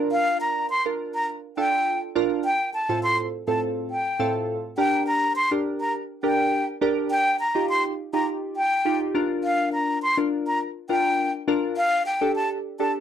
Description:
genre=pop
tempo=103 BPM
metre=4/4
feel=straight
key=unclear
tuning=A4 = 440 Hz
part: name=glassy digital keys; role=accompaniment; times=0.0-13.0 s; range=A2 to Bb4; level=-25 LUFS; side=right 1 dB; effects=chorus, phaser
part: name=breathy concert flute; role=melody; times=0.1-12.9 s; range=F5 to C6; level=-22 LUFS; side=equal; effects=slapback echo
room=light reverb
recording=dry, close 1970s-style studio recording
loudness=-22 LUFS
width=side -9 dB against mid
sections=0.0-13.0 A section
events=none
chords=0.0 Bb; 2.4 F/A; 4.8 Gm; 7.1 Ebadd9; 9.1 Bb; 11.8 Dsus4

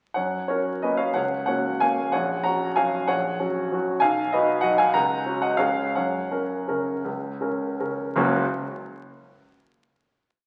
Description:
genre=classical, piano waltz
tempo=158-204 BPM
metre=3/4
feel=rubato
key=F# major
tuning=A4 = 439 Hz
part: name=clear grand piano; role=solo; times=0.1-8.4 s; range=F#1 to A#5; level=-24 LUFS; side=equal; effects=none
room=wet recital hall reverb, RT60 1.7 s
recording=very old 78 rpm record, vinyl crackle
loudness=-24 LUFS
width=mono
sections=0.2-8.2 A section; 8.2-9.2 final chord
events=none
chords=0.2 F#; 2.1 F#/A#; 4.0 B; 5.0 F#/C#; 5.6 C#; 6.0 F#

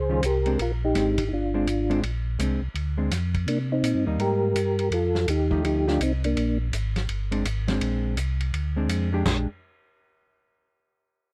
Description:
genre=soul jazz organ trio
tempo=166 BPM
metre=4/4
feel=swing 64% on 8ths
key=Bb mixolydian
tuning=A4 = 441 Hz
part: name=percussive tonewheel organ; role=melody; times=0.0-6.6 s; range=Bb3 to C5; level=-27 LUFS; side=equal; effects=slow rotary speaker, chorus vibrato, slapback echo
part: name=mellow tonewheel organ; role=bass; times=0.0-9.5 s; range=G1 to C3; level=-29 LUFS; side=equal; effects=chorus vibrato, slow rotary speaker
part: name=hollow-body jazz guitar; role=accompaniment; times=0.1-9.5 s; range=Eb3 to G4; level=-30 LUFS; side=equal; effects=none
part: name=warm soul drum kit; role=drums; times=0.2-9.4 s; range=crash cymbal, hi-hat, kick drum, ride cymbal, snare drum, toms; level=-35 LUFS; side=equal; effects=none
room=little or no reverb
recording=dry, close 1970s-style studio recording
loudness=-25 LUFS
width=mono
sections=0.0-9.3 A section; 9.3-10.7 B section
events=none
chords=0.0 Eb9; 0.6 Bb9; 3.5 Cm7; 4.9 F9; 6.4 Bb9; 9.3 Bb6

